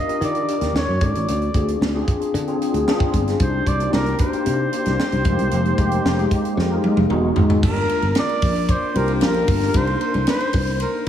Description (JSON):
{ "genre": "polished 1980s jazz-funk pop", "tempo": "113 BPM", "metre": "4/4", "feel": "straight", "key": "C minor", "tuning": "A4 = 440 Hz", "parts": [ { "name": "warm flugelhorn", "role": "melody", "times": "0.0-11.1 s", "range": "Bb4 to Eb5", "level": "-24 LUFS", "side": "right 1 dB", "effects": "tape echo" }, { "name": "mellow tine electric piano", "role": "accompaniment", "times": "0.0-11.1 s", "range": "Ab3 to Bb4", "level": "-22 LUFS", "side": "left 2 dB", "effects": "ensemble chorus" }, { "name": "tight funk drum kit", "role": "drums", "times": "0.1-11.1 s", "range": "crash cymbal, hi-hat, kick drum, ride cymbal, snare drum, toms", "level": "-22 LUFS", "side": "equal", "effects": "none" }, { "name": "fingered electric bass", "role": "bass", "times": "0.2-10.8 s", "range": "E1 to Eb3", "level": "-22 LUFS", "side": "equal", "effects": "none" } ], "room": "moderate lush hall reverb, RT60 1.9 s, studio reverb", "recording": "dreamy mix soaked in reverb, small room ambience", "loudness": "-17 LUFS", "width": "side -10 dB against mid", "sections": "0.0-7.6 A section; 7.6-11.1 B section", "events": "drum fill 6.6-7.6", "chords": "0.0 Ebmaj7; 0.7 D#m7b5; 1.3 Dm7b5; 3.4 Cm9; 5.3 Fm11; 7.1 Emaj7; 7.6 Gm7; 9.8 Cm9" }